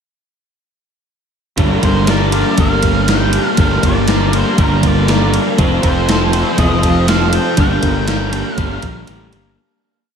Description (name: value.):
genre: rock, shoegaze and dream pop.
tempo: 120 BPM.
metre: 4/4.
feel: straight.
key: G minor.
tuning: A4 = 438 Hz.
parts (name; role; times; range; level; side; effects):
crunchy overdriven guitar; riff; 1.6-9.6 s; G2 to Bb4; -16 LUFS; equal; lush chorus.
fuzz fingered electric bass; bass; 1.6-9.6 s; F1 to Bb1; -17 LUFS; equal; overdrive.
gated 80s digital drum machine; drums; 1.6-9.4 s; kick drum, ride cymbal, snare drum; -17 LUFS; equal; gated reverb, gated reverb snare.
octave-fuzz lead guitar; melody; 1.8-9.1 s; Bb4 to G5; -22 LUFS; right 2 dB; distortion, analog delay.
room: moderate lush hall reverb, RT60 2.1 s.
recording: dreamy mix soaked in reverb.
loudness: -11 LUFS.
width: side -7 dB against mid.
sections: 1.6-9.6 A section.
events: fade-out 7.6-9.6; break 9.1-9.6.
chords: 1.6 Gm; 5.6 F; 7.6 Gm.